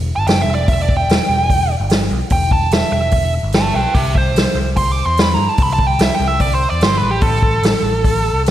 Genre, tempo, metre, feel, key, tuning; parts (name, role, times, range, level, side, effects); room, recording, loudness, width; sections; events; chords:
blues rock power trio and southern rock; 147 BPM; 4/4; straight; E minor; A4 = 442 Hz
overdriven picked electric bass; bass; 0.0-8.5 s; E1 to G2; -19 LUFS; left 1 dB
nasal lead guitar with a parked wah; second line; 0.2-8.4 s; G4 to D6; -18 LUFS; right 2 dB; overdrive, tape echo, slapback echo
vintage drum kit; drums; 0.3-8.5 s; hi-hat, kick drum, snare drum; -16 LUFS; equal
moderate lush hall reverb, RT60 1.8 s, small room ambience; big arena sound; -13 LUFS; side -12 dB against mid
0.0-8.5 A section
lead electric guitar solo 0.0-8.5
0.0 Em; 4.0 N.C.; 7.2 Am